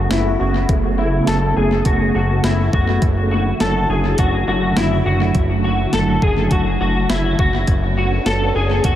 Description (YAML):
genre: dream pop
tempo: 103 BPM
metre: 4/4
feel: straight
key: unclear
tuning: A4 = 441 Hz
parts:
  - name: phased string machine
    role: sustained chords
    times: 0.0-9.0 s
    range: C#3 to G#4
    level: -21 LUFS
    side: right 1 dB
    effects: ensemble chorus, phaser, low-pass filter
  - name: clean electric guitar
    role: arpeggios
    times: 0.0-9.0 s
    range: E4 to A4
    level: -20 LUFS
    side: left 2 dB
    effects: ensemble chorus, low-pass filter, analog delay
  - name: fat analog bass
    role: bass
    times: 0.0-9.0 s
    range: F#1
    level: -19 LUFS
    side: equal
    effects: none
  - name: clean 12-bit digital drum machine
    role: drums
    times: 0.1-9.0 s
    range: hi-hat, kick drum, snare drum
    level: -21 LUFS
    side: equal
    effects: overdrive, analog delay
room: light reverb, digital ambience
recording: echo-heavy mix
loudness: -15 LUFS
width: side -12 dB against mid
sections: 0.0-9.0 A section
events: filter sweep 0.0-9.0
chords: 0.0 Amaj9/F#; 3.0 E9sus4/F#; 7.7 Bm9/F#